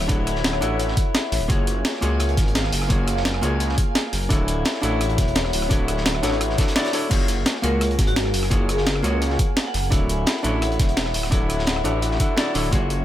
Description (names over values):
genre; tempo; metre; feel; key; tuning
liquid drum and bass; 171 BPM; 4/4; straight; unclear; A4 = 442 Hz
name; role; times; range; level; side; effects
hollow-body jazz guitar; accompaniment; 0.0-13.0 s; A#3 to E5; -26 LUFS; equal; tape echo
glassy FM pad; sustained chords; 0.0-13.0 s; A#4 to G#5; -30 LUFS; left 2 dB; ensemble chorus, built-in reverb, sidechain pumping
swelling detuned saw bass; bass; 0.0-13.0 s; D1 to C#2; -24 LUFS; equal; tube saturation
breakbeat sampler-style drum kit; drums; 0.0-13.0 s; crash cymbal, hi-hat, rim click, snare drum; -25 LUFS; equal; none
crunchy breakbeat drum kit; drums; 0.0-13.0 s; hi-hat, snare drum; -32 LUFS; equal; high-pass filter on hats, high-pass filter on snare, high-pass filter on room
electronic kick drum; drums; 0.1-12.8 s; none; -21 LUFS; equal; overdrive
vibraphone with hard mallets; melody; 7.6-10.0 s; F#4 to F#5; -29 LUFS; equal; dub echo
room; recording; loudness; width
small room ambience; none; -19 LUFS; side -12 dB against mid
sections
0.0-13.0 A section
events
none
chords
0.0 Dmaj9; 1.5 F#maj7; 4.3 Dmaj9; 7.1 F#maj7; 9.9 Dmaj9